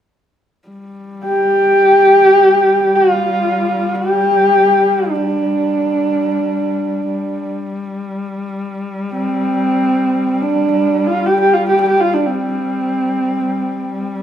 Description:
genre	mongolian traditional, Mongolian folk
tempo	free time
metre	none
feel	none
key	unclear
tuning	A4 = 441 Hz
part	warm horsehead fiddle	drone	0.7-14.2 s	G3	-23 LUFS	left 2 dB	none
part	dark horsehead fiddle	melody	1.2-14.2 s	C4 to G4	-13 LUFS	equal	none
room	wet recital hall reverb, RT60 1.5 s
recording	close, detailed microphones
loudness	-12 LUFS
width	side -10 dB against mid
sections	0.7-14.2 A section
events	none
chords	none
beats	free time

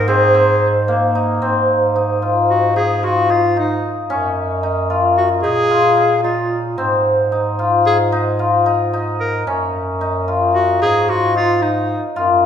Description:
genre	contemporary instrumental, chamber music in an uneven meter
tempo	223 BPM (eighths)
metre	5/8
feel	straight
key	Ab mixolydian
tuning	A4 = 439 Hz
part	breathy clarinet	melody	0.0-12.0 s	Eb4 to Bb4	-19 LUFS	right 1 dB	none
part	cimbalom	arpeggios	0.0-12.5 s	Bb3 to F4	-16 LUFS	left 2 dB	none
part	mellow bass clarinet	bass	0.0-12.5 s	Gb2 to Bb2	-21 LUFS	right 1 dB	none
room	wet recital hall reverb, RT60 1.6 s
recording	minimal, uncompressed stereo recording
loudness	-14 LUFS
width	side -8 dB against mid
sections	0.0-1.4 A section; 1.4-12.2 B section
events	none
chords	0.0 Ab; 4.1 Gb5; 5.4 Bb5; 6.8 Ab; 9.5 Gb5; 10.8 Ab5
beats	| 0.08 0.34 0.61 0.88 1.15 | 1.42 1.68 1.95 2.22 2.49 | 2.76 3.02 3.29 3.56 3.83 | 4.10 4.37 4.63 4.90 5.17 | 5.44 5.71 5.98 6.25 6.51 | 6.78 7.05 7.32 7.59 7.86 | 8.13 8.39 8.66 8.93 9.20 | 9.47 9.74 10.01 10.28 10.55 | 10.82 11.09 11.36 11.62 11.89 | 12.16 12.43

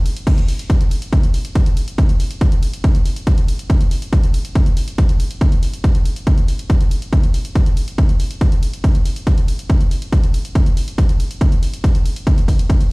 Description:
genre	techno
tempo	140 BPM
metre	4/4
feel	straight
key	none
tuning	none
part	techno drum kit	drums	0.1-12.9 s	crash cymbal, hi-hat, ride cymbal	-33 LUFS	equal	overdrive, sidechain pumping on hats, sidechain pumping on cymbals
part	electronic kick drum	drums	0.3-12.8 s	none	-14 LUFS	equal	overdrive
room	digital ambience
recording	played on a big sound system in a bare room, stone room reverb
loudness	-14 LUFS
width	side -28 dB against mid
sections	0.0-12.9 A section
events	none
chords	none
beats	| 0.27 0.70 1.13 1.55 | 1.98 2.41 2.84 3.27 | 3.70 4.13 4.55 4.98 | 5.41 5.84 6.27 6.70 | 7.13 7.55 7.98 8.41 | 8.84 9.27 9.70 10.13 | 10.55 10.98 11.41 11.84 | 12.27 12.70

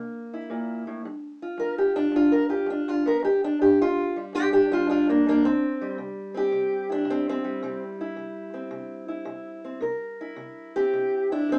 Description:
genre	acoustic country blues, solo or duo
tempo	109 BPM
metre	4/4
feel	swing 68% on 8ths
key	unclear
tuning	A4 = 440 Hz
part	fingerpicked steel-string acoustic guitar	solo	0.0-11.6 s	G2 to Bb4	-26 LUFS	equal	none
room	wet studio reverb, RT60 0.7 s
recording	band playing live in one room, small speaker sound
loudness	-25 LUFS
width	mono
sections	0.0-11.6 A section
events	steel-string acoustic guitar solo 0.0-11.6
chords	0.0 C7; 1.0 G7(no3); 5.4 C7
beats	0.48 | 1.03 1.58 2.12 2.67 | 3.22 3.77 4.32 4.87 | 5.42 5.97 6.52 7.07 | 7.62 8.17 8.72 9.28 | 9.83 10.39 10.94 11.50

